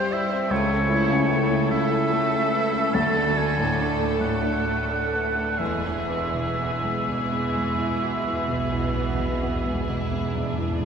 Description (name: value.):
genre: classical, romantic movement for piano and orchestra.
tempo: 40-52 BPM (dotted quarters).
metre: 12/8.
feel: rubato.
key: unclear.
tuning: A4 = 442 Hz.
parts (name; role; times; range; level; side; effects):
clear chamber violin section; melody; 0.0-10.8 s; G#4 to C5; -35 LUFS; left 1 dB; none.
clear grand piano; melody; 0.0-10.8 s; C#2 to D5; -25 LUFS; equal; none.
clear chamber violin section; second line; 0.0-10.8 s; G#3 to G4; -34 LUFS; left 2 dB; none.
warm oboe; second line; 0.0-10.8 s; C5 to A5; -27 LUFS; right 1 dB; none.
rich chamber viola section; accompaniment; 0.0-10.8 s; E3 to A3; -33 LUFS; right 1 dB; none.
clear chamber cello section; bass; 0.5-9.7 s; C#2 to B2; -35 LUFS; right 2 dB; none.
rich chamber double bass section; bass; 0.5-9.7 s; E1 to D2; -33 LUFS; right 2 dB; none.
timpani; percussion; 5.6-10.8 s; E2; -33 LUFS; right 1 dB; none.
room: wet church reverb, RT60 3.1 s.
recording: minimal, uncompressed stereo recording.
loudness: -21 LUFS.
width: side -6 dB against mid.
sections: 0.0-10.8 A section.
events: timpani fill 5.6-10.8.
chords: 0.0 C; 0.5 A/C#; 3.0 D; 5.6 E.